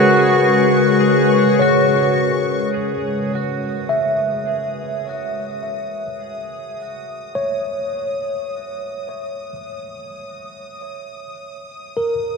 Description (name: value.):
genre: ambient.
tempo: 52 BPM.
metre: 4/4.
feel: straight.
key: C# minor.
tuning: A4 = 439 Hz.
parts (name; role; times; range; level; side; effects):
pedal steel guitar; melody; 0.0-1.6 s; F#4; -20 LUFS; left 2 dB; ping-pong delay.
tine electric piano; arpeggios; 0.0-12.4 s; G#4 to E5; -21 LUFS; equal; medium stereo tremolo, ping-pong delay.
bowed-like drone; drone; 0.0-2.9 s; C#3 to G#3; -21 LUFS; equal; built-in reverb.
clear studio violin section; texture; 0.0-12.4 s; C#6 to D#6; -30 LUFS; left 1 dB; none.
room: wet huge ambient reverb, RT60 8.6 s.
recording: dark, warm production.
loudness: -16 LUFS.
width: side -4 dB against mid.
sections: 0.0-2.7 A section; 2.7-12.4 B section.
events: fade-in on violin section 2.7-12.4.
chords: 0.0 Bsus2/C#; 2.7 C#madd9.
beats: 0.44 1.59 | 2.75 3.90 5.05 6.21 | 7.36 8.51 9.67 10.82 | 11.97.